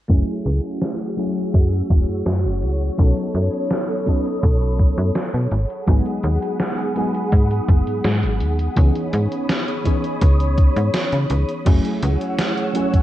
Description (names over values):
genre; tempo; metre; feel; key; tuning
vaporwave; 83 BPM; 4/4; straight; F# dorian; A4 = 441 Hz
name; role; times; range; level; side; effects
mellow FM electric piano; accompaniment; 0.1-13.0 s; E3 to A4; -24 LUFS; equal; ensemble chorus, cassette tape, analog delay
soft string machine; sustained chords; 0.1-13.0 s; F#4 to E6; -27 LUFS; equal; phaser, ensemble chorus
slap-like FM bass; bass; 0.1-12.2 s; E1 to C#3; -19 LUFS; equal; tube saturation
electronic kick drum; drums; 0.1-13.0 s; none; -15 LUFS; equal; none
gated 80s digital drum machine; drums; 0.1-13.0 s; crash cymbal, hi-hat, snare drum; -26 LUFS; equal; gated reverb, gated reverb snare
room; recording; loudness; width
light reverb; cassette tape, low-pass filter; -17 LUFS; side -14 dB against mid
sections
0.1-11.7 A section; 11.7-13.0 B section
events
filter sweep on string machine 0.1-11.7; filter sweep 0.1-11.7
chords
0.1 F#m7; 3.0 B9; 5.5 G#m7; 8.8 C#m9; 11.7 F#m7